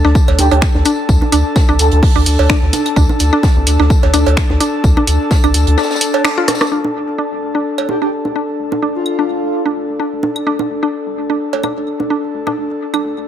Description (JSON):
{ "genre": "minimal techno", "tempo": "128 BPM", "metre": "4/4", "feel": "swing 55% on 16ths", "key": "unclear", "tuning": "A4 = 440 Hz", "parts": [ { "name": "mallet-like synth pluck", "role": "riff", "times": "0.0-13.0 s", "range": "D4 to F4", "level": "-20 LUFS", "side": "equal", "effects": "chorus, sidechain pumping, dub echo" }, { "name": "rubbery square bass", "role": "bass", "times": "0.0-13.3 s", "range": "C2 to D2", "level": "-15 LUFS", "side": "equal", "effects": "sidechain pumping, high-pass filter" }, { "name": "compact cocktail drum kit", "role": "drums", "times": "0.0-6.7 s", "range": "hi-hat, snare drum, tambourine", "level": "-26 LUFS", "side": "equal", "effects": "high-pass filter on hats, high-pass filter on snare, high-pass filter on perc, high-pass filter on room" }, { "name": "airy breathy pad", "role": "texture", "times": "0.0-13.3 s", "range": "D4 to A5", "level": "-20 LUFS", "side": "left 2 dB", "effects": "chorus, sidechain pumping" }, { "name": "electronic kick drum", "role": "drums", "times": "0.2-5.4 s", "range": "none", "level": "-12 LUFS", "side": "equal", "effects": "overdrive" }, { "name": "cowbell, claves and congas", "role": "percussion", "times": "0.3-13.0 s", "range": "none", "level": "-20 LUFS", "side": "right 6 dB", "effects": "digital delay" }, { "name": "breathy flute-like synth lead", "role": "melody", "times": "0.4-2.0, 7.9-9.6 s", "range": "F4 to A4", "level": "-20 LUFS", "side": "equal", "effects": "phaser, lush chorus, digital delay" }, { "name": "punchy analog drum machine", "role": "drums", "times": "0.4-6.7 s", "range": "finger snaps, hi-hat, rim click", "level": "-17 LUFS", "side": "equal", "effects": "low-pass filter on hats, low-pass filter on snare" } ], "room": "light reverb", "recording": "none", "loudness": "-12 LUFS", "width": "side -10 dB against mid", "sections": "0.0-6.7 A section; 6.7-13.3 B section", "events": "band accent 6.2; drum fill 6.5", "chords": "0.0 D5" }